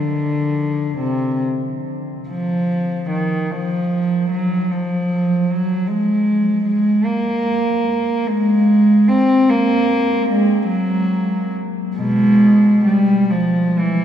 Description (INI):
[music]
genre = classical, free, expressive piece for unaccompanied cello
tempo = 40-54 BPM (dotted quarters)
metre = 6/8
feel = rubato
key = unclear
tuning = A4 = 440 Hz
[part]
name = warm cello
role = solo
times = 0.0-14.0 s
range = B2 to C4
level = -15 LUFS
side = equal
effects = none
[sound]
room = wet cathedral reverb, RT60 6.1 s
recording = dark, warm production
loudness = -15 LUFS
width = side -10 dB against mid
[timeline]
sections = 0.0-14.0 A section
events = none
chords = none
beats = 0.98 | 2.29 3.52 | 4.74 5.89 | 7.07 8.28 | 9.49 10.69 | 11.96 13.33